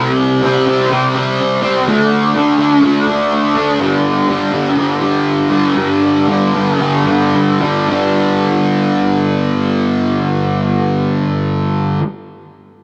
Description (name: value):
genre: rock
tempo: 106-126 BPM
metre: 4/4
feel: straight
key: unclear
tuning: A4 = 440 Hz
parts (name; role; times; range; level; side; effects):
- fuzz guitar; solo; 0.0-12.0 s; G2 to D4; -14 LUFS; equal; distortion, lush chorus
room: light reverb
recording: dark, warm production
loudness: -14 LUFS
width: mono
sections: 0.0-7.9 A section; 7.9-12.4 B section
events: slowing down 3.8-7.9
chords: 0.0 C5; 1.9 D5; 3.8 G5